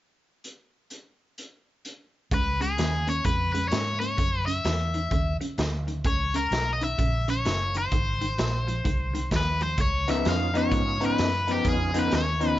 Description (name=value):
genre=electric blues shuffle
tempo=128 BPM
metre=4/4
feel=swing 63% on 8ths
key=Db mixolydian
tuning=A4 = 439 Hz
part: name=raw garage drum kit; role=drums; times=0.4-12.5 s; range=hi-hat, kick drum, snare drum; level=-30 LUFS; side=equal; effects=none
part: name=biting overdriven guitar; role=melody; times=2.3-12.6 s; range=G4 to F5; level=-28 LUFS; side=left 2 dB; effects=none
part: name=electric guitar through a small old amp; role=riff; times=2.3-12.6 s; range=Gb2 to Eb4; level=-30 LUFS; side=left 1 dB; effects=analog chorus
part: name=vintage muted fingered electric bass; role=bass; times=2.3-12.6 s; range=Gb1 to Ab2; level=-29 LUFS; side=right 1 dB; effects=none
part: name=tonewheel organ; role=accompaniment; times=10.2-11.9 s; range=Cb4 to F4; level=-33 LUFS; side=right 6 dB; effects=overdrive, chorus vibrato, slow rotary speaker
room=light reverb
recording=nothing above 7.7 kHz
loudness=-23 LUFS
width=side -14 dB against mid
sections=0.4-2.3 A section; 2.3-9.8 B section; 9.8-12.6 C section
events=none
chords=0.4 N.C.; 2.3 Db; 4.2 Gb7; 7.9 Ab; 9.8 Db9